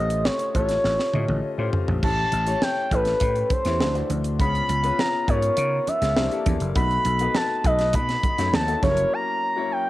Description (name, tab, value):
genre	polished 1980s jazz-funk pop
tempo	102 BPM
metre	4/4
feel	straight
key	unclear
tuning	A4 = 440 Hz
part	expressive synth lead	melody	0.0-9.9 s	B4 to B5	-24 LUFS	equal	chorus, cassette tape
part	clear concert grand piano	accompaniment	0.0-9.9 s	F#3 to D#5	-29 LUFS	left 6 dB	wide subtle chorus, cassette tape
part	vintage slap bass	bass	0.0-9.0 s	F#1 to C#3	-26 LUFS	equal	none
part	tight funk drum kit	drums	0.1-9.1 s	crash cymbal, hi-hat, kick drum, snare drum, toms	-26 LUFS	equal	cassette tape
part	congas	percussion	2.0-9.0 s	none	-34 LUFS	right 7 dB	none
room	light reverb, studio reverb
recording	home recording on cassette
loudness	-20 LUFS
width	side -16 dB against mid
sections	0.0-2.0 A section; 2.0-9.9 B section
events	drum fill 0.8-2.0; break 9.1-9.9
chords	0.0 A7alt; 2.0 A7; 3.8 D9; 4.4 C#7; 6.2 C9; 6.8 B7; 8.8 F#7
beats	0.25 0.85 1.44 | 2.03 2.62 3.21 3.81 | 4.40 4.99 5.58 6.17 | 6.76 7.35 7.94 8.53 | 9.12 9.72